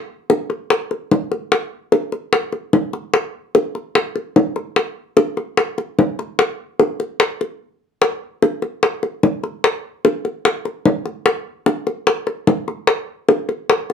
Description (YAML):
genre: jazz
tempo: 148 BPM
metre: 4/4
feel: straight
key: none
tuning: none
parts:
  - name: bongos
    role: percussion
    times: 0.3-13.9 s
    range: none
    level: -16 LUFS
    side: left 2 dB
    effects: none
room: moderate club reverb, RT60 0.6 s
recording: close, detailed microphones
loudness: -17 LUFS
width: side -7 dB against mid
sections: 0.0-8.0 A section; 8.0-13.9 B section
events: stop 7.6-8.0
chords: none